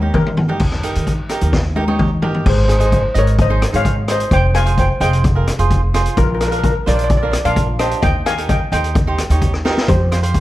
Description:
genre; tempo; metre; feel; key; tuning
calypso; 129 BPM; 4/4; straight; Ab major; A4 = 440 Hz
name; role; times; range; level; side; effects
steel pan; melody; 0.0-10.4 s; F4 to Ab5; -20 LUFS; left 2 dB; none
cavaquinho; accompaniment; 0.0-10.4 s; D4 to Eb5; -23 LUFS; right 5 dB; none
upright bass; bass; 0.0-10.4 s; F1 to Eb3; -17 LUFS; equal; none
street-band drum kit; drums; 0.1-10.4 s; crash cymbal, hi-hat, kick drum, rim click, snare drum, toms; -18 LUFS; left 1 dB; none
room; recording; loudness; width
light reverb; dark, warm production; -13 LUFS; side -15 dB against mid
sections
0.6-2.5 A section; 2.5-10.4 B section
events
drum fill 0.0-0.6, 1.5-2.5, 9.7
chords
0.0 Eb; 2.5 Ab; 4.3 Fmadd9; 6.2 Bb; 8.0 Eb; 9.9 Fsus2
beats
0.14 | 0.60 1.07 1.53 2.00 | 2.46 2.93 3.39 3.85 | 4.32 4.78 5.25 5.71 | 6.17 6.64 7.10 7.57 | 8.03 8.49 8.96 9.42 | 9.88 10.35

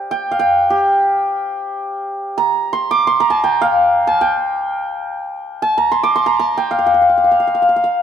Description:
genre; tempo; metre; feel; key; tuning
Persian modal ensemble; free time; none; none; G dastgah shur; A4 = 444 Hz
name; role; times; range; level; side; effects
santur; solo; 0.0-8.0 s; G4 to D6; -14 LUFS; equal; none
room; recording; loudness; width
light reverb; close, detailed microphones; -13 LUFS; side -8 dB against mid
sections
0.0-2.1 A section; 2.1-8.0 A section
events
none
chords
none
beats
free time

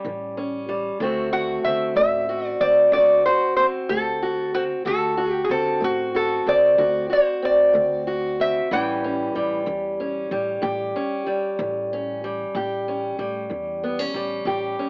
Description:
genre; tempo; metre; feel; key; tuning
acoustic country blues, solo or duo; 62 BPM (dotted quarters); 12/8; straight; unclear; A4 = 440 Hz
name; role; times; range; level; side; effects
fingerpicked steel-string acoustic guitar; accompaniment; 0.0-14.9 s; A2 to G4; -27 LUFS; equal; cassette tape
upright bass; bass; 0.0-14.7 s; A1 to D3; -40 LUFS; equal; none
lap resonator guitar; melody; 1.3-10.6 s; F#4 to G5; -21 LUFS; equal; cassette tape
room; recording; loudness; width
light reverb; home recording on cassette, AM radio sound; -22 LUFS; mono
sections
0.0-14.9 A section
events
none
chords
0.0 A7; 1.0 D7; 8.7 A7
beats
0.05 | 1.01 1.98 2.94 3.90 | 4.86 5.83 6.79 7.75 | 8.71 9.68 10.64 11.60 | 12.56 13.51 14.47

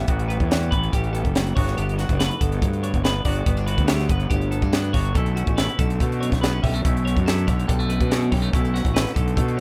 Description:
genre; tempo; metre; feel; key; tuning
math rock and midwest emo; 142 BPM; 4/4; straight; unclear; A4 = 440 Hz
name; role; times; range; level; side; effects
twangy electric guitar; accompaniment; 0.0-9.6 s; D2 to F#4; -33 LUFS; equal; none
twelve-string electric guitar; arpeggios; 0.0-9.6 s; F#4 to E5; -33 LUFS; equal; none
fuzz fingered electric bass; bass; 0.0-9.6 s; F#1 to B2; -25 LUFS; equal; overdrive
crisp fusion drum kit; drums; 0.1-9.6 s; hi-hat, kick drum, snare drum; -25 LUFS; equal; none
room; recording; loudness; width
little or no reverb; rough home demo mix; -22 LUFS; mono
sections
0.0-9.6 A section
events
none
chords
0.0 A7sus2; 1.6 Gmaj9; 5.2 Bm11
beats
| 0.08 0.50 0.92 1.35 | 1.77 2.19 2.62 3.04 | 3.46 3.88 4.31 4.73 | 5.15 5.58 6.00 6.42 | 6.84 7.26 7.69 8.11 | 8.53 8.95 9.37

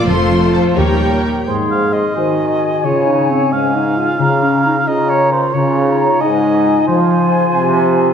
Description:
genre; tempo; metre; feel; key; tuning
cinematic, heroic adventure film score; 88 BPM (dotted quarters); 6/8; straight; Ab major; A4 = 440 Hz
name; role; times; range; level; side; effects
rich studio violin section; melody; 0.0-1.5 s; G5 to C6; -23 LUFS; left 1 dB; none
rich symphonic violin section; second line; 0.0-1.3 s; A4 to Db5; -22 LUFS; left 1 dB; none
clear symphonic viola section; accompaniment; 0.0-1.3 s; G3 to G4; -21 LUFS; right 1 dB; none
dark French horn section; sustained chords; 0.0-1.1 s; F4 to G4; -21 LUFS; left 2 dB; none
concert harp; arpeggios; 0.0-8.1 s; Ab2 to F5; -20 LUFS; left 6 dB; none
rich symphonic cello section; bass; 0.0-1.3 s; Eb2 to F2; -20 LUFS; right 2 dB; none
rich symphonic double bass section; bass; 0.1-1.2 s; F1 to Eb2; -20 LUFS; right 3 dB; none
mellow clarinet; second line; 1.5-8.1 s; C4 to Ab4; -19 LUFS; left 1 dB; none
mellow small flute group; second line; 1.5-8.1 s; Ab5 to C6; -19 LUFS; left 1 dB; none
warm cor anglais; second line; 1.5-8.1 s; C5 to F5; -18 LUFS; right 3 dB; none
clear trombone section; sustained chords; 1.5-8.1 s; Ab2 to F3; -17 LUFS; right 2 dB; none
room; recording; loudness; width
wet concert hall reverb, RT60 2.4 s; none; -12 LUFS; side -7 dB against mid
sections
0.0-1.5 A section; 1.5-8.1 B section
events
none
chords
0.1 F; 0.8 Eb7; 1.5 Ab; 2.8 Dbadd9; 4.2 Bbm/Db; 5.5 Dbadd9; 6.9 Fm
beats
| 0.07 0.76 | 1.47 2.15 | 2.83 3.51 | 4.19 4.87 | 5.54 6.21 | 6.88 7.55

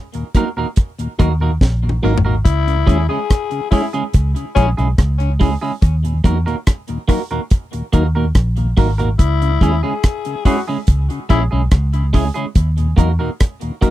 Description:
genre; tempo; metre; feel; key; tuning
roots reggae; 71 BPM; 4/4; straight; C# dorian; A4 = 442 Hz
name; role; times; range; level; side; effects
mellow tonewheel organ; accompaniment; 0.1-13.9 s; D#2 to E4; -23 LUFS; left 3 dB; slow rotary speaker
deep reggae drum kit; drums; 0.1-13.9 s; hi-hat, kick drum, rim click, snare drum, toms; -14 LUFS; equal; none
clean electric guitar; accompaniment; 0.4-13.9 s; G#3 to A#4; -23 LUFS; right 5 dB; tape echo
vintage muted fingered electric bass; bass; 1.2-13.2 s; G#1 to E2; -16 LUFS; equal; none
growling tenor saxophone; second line; 2.4-11.4 s; C#4 to G#4; -22 LUFS; left 11 dB; tape echo
room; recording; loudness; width
little or no reverb; dry, close 1970s-style studio recording; -14 LUFS; side -14 dB against mid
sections
0.0-13.9 A section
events
drum fill 1.6-2.5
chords
0.0 D#m; 2.5 C#m; 5.8 D#m; 9.2 C#m; 12.6 D#m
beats
0.77 1.61 | 2.46 3.30 4.14 4.98 | 5.83 6.67 7.51 8.36 | 9.20 10.04 10.88 11.72 | 12.57 13.41

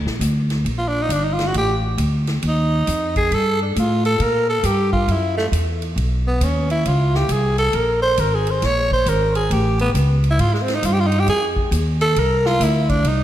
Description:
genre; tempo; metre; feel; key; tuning
jazz, small-group swing and bop; 136 BPM; 4/4; swing 65% on 8ths; unclear; A4 = 440 Hz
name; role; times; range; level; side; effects
upright bass; bass; 0.0-13.2 s; G1 to Bb2; -19 LUFS; equal; none
swinging big-band drum kit; drums; 0.1-13.2 s; hi-hat, kick drum, ride cymbal, snare drum; -29 LUFS; equal; none
growling tenor saxophone; second line; 0.8-13.2 s; Ab3 to Db5; -20 LUFS; right 1 dB; none
room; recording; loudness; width
moderate lush hall reverb, RT60 1.9 s, small room ambience; dreamy mix soaked in reverb; -16 LUFS; side -12 dB against mid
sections
0.0-13.2 A section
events
tenor saxophone solo 0.0-13.2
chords
0.0 Bb; 1.5 Asus4; 2.4 Ebsus2; 3.3 Gm; 5.1 Esus2; 6.0 B; 6.9 Db5; 8.6 Absus2; 9.5 A; 10.4 Ab5; 12.2 C9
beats
0.22 0.66 1.10 | 1.55 1.99 2.43 2.87 | 3.32 3.76 4.20 4.64 | 5.09 5.53 5.97 6.41 | 6.86 7.30 7.74 8.18 | 8.62 9.07 9.51 9.95 | 10.39 10.84 11.28 11.72 | 12.16 12.60 13.05

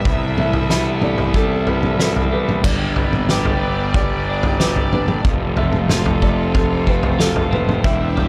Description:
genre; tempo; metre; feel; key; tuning
post-rock; 92 BPM; 4/4; straight; G mixolydian; A4 = 440 Hz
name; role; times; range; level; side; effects
rich studio string section; sustained chords; 0.0-8.3 s; B3 to E5; -29 LUFS; equal; none
felt-muted upright piano; arpeggios; 0.0-8.3 s; A4 to E5; -29 LUFS; equal; tape echo
twelve-string electric guitar; arpeggios; 0.0-8.3 s; F2 to G4; -27 LUFS; equal; subtle chorus, tape echo
fuzz fingered electric bass; bass; 0.0-8.3 s; E1 to C2; -23 LUFS; equal; overdrive
loose indie drum kit; drums; 0.1-8.3 s; crash cymbal, kick drum, snare drum, toms; -21 LUFS; equal; none
room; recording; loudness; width
light reverb, small room ambience; none; -18 LUFS; mono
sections
0.0-2.7 A section; 2.7-8.3 B section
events
none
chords
0.0 Cmaj7; 2.7 G; 5.3 F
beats
| 0.06 0.71 1.36 2.01 | 2.66 3.31 3.96 4.60 | 5.25 5.90 6.55 7.20 | 7.85

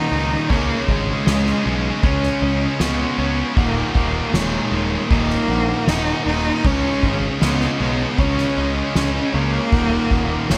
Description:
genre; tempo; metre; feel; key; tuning
post-rock; 78 BPM; 4/4; straight; unclear; A4 = 439 Hz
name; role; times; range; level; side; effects
rich cello; melody; 0.0-10.6 s; Ab3 to Eb4; -25 LUFS; equal; digital delay
electric guitar through a small old amp; arpeggios; 0.0-10.6 s; Bb4 to Gb5; -35 LUFS; equal; digital delay
sludgy distorted guitar; riff; 0.0-10.6 s; Eb2 to Db4; -27 LUFS; equal; overdrive
tight distorted guitar; riff; 0.0-10.6 s; Eb2 to Db4; -28 LUFS; equal; distortion
fuzz picked electric bass; bass; 0.1-10.6 s; Eb1 to Db2; -26 LUFS; equal; overdrive
soft-mallet drum kit; drums; 0.1-10.6 s; crash cymbal, kick drum, snare drum; -25 LUFS; equal; none
room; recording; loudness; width
light reverb, small room ambience; none; -19 LUFS; mono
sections
0.0-10.6 A section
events
none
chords
0.0 Ebm; 0.5 Db5; 3.6 Ebm; 6.7 Db5; 9.7 Ebm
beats
| 0.50 1.27 2.04 2.81 | 3.57 4.34 5.11 5.88 | 6.65 7.42 8.19 8.96 | 9.73 10.50

